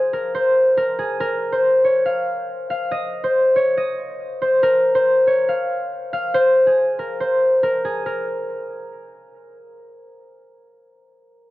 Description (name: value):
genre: hip hop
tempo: 140 BPM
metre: 4/4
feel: half-time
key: Bb minor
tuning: A4 = 438 Hz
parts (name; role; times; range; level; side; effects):
- concert harp; solo; 0.0-10.2 s; Ab4 to F5; -17 LUFS; equal; low-pass filter
room: studio reverb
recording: dry, gritty hardware recording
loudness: -16 LUFS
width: side -17 dB against mid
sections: 0.0-8.1 A section; 8.1-11.5 B section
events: none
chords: none